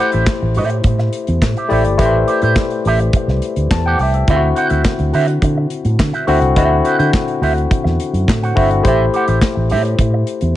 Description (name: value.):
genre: disco.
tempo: 105 BPM.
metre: 4/4.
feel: straight.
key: A dorian.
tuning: A4 = 441 Hz.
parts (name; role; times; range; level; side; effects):
barky tine electric piano; accompaniment; 0.0-10.6 s; D3 to A5; -18 LUFS; left 5 dB; none.
electric guitar with an envelope filter; accompaniment; 0.0-10.5 s; F#4 to F#5; -20 LUFS; right 5 dB; wah, tremolo.
fingered electric bass with an envelope filter; bass; 0.1-10.5 s; G1 to D3; -16 LUFS; equal; none.
modern studio drum kit; drums; 0.1-10.5 s; handclaps, hi-hat, kick drum, snare drum; -18 LUFS; equal; none.
room: studio reverb.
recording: nothing above 10.7 kHz.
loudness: -13 LUFS.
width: side -14 dB against mid.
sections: 0.0-10.6 A section.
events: none.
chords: 0.0 Am7; 4.3 D9; 8.8 Am7.